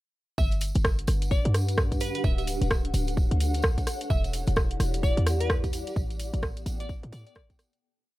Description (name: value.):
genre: UK garage, two-step garage.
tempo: 129 BPM.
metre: 4/4.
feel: swing 61% on 16ths.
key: unclear.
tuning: A4 = 435 Hz.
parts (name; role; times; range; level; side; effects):
glassy wavetable pluck; melody; 0.4-7.4 s; B4 to E5; -35 LUFS; equal; chorus.
short 808-style bass; bass; 0.4-7.2 s; D1 to A2; -27 LUFS; equal; sidechain pumping.
electronic kick drum; drums; 0.4-7.6 s; none; -27 LUFS; equal; none.
tambourine; percussion; 0.4-7.8 s; none; -43 LUFS; right 1 dB; none.
granular cloud pad; texture; 1.2-7.8 s; B3 to G5; -35 LUFS; equal; built-in reverb, sidechain pumping.
house drum kit; drums; 0.5-7.8 s; hi-hat, rim click; -30 LUFS; equal; none.
room: light reverb.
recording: none.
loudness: -24 LUFS.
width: side -17 dB against mid.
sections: 0.4-7.8 drop.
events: drop 0.4-7.8; fade-out 5.3-7.8.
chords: 0.4 Gmaj7; 2.2 Dmaj7; 3.9 Em9; 6.0 A9sus4.